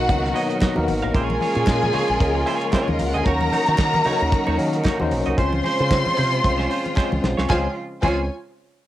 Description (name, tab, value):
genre	disco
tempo	113 BPM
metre	4/4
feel	swing 56% on 16ths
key	Db major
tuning	A4 = 440 Hz
part	warm symphonic string section	second line	0.0-8.3 s	C4 to C6	-23 LUFS	equal	cassette tape, plate reverb
part	tine electric piano	accompaniment	0.0-8.3 s	Gb3 to Db5	-25 LUFS	left 3 dB	overdrive, fast stereo tremolo, cassette tape
part	clear studio string section	sustained chords	0.0-7.8 s	Cb3 to C5	-28 LUFS	right 1 dB	cassette tape
part	fingered electric bass with an envelope filter	bass	0.0-8.3 s	Ab1 to Eb3	-25 LUFS	right 1 dB	none
part	semi-hollow electric guitar	accompaniment	0.1-8.2 s	Db4 to F5	-29 LUFS	right 6 dB	cassette tape
part	damped 70s drum kit	drums	0.1-8.2 s	crash cymbal, hi-hat, kick drum, snare drum	-23 LUFS	right 1 dB	cassette tape
part	congas	percussion	0.1-8.3 s	none	-31 LUFS	left 2 dB	none
part	group handclap	percussion	0.6-8.3 s	none	-38 LUFS	equal	none
room	light reverb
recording	home recording on cassette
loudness	-18 LUFS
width	side -13 dB against mid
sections	0.0-7.5 A section; 7.5-8.9 B section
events	drum fill 7.0-7.5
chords	0.0 Cbmaj7; 1.1 Bbm7; 3.3 Ebm7; 5.4 Dbmaj7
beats	0.09 0.62 | 1.15 1.67 2.20 2.73 | 3.26 3.79 4.32 4.85 | 5.38 5.91 6.44 6.97 | 7.50 8.03